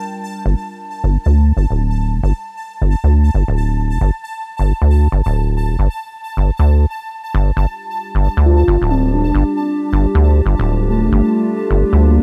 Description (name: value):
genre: IDM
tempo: 135 BPM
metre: 4/4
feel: swing 62% on 16ths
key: unclear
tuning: A4 = 442 Hz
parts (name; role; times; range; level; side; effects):
- warbly tape-like pad; sustained chords; 0.0-0.4, 8.1-12.2 s; G3 to Bb4; -25 LUFS; equal; chorus, built-in reverb, vintage 12-bit sampler grit
- pulsing gated texture; texture; 0.0-12.2 s; A5; -30 LUFS; equal; chorus, built-in reverb
- deep acid bass; bass; 0.5-12.2 s; D1 to D2; -15 LUFS; equal; none
- warm velvety synth lead; melody; 8.5-12.2 s; A3 to F4; -20 LUFS; equal; chorus
room: little or no reverb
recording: none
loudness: -16 LUFS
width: mono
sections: 0.5-12.2 A section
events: none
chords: 0.5 Dsus4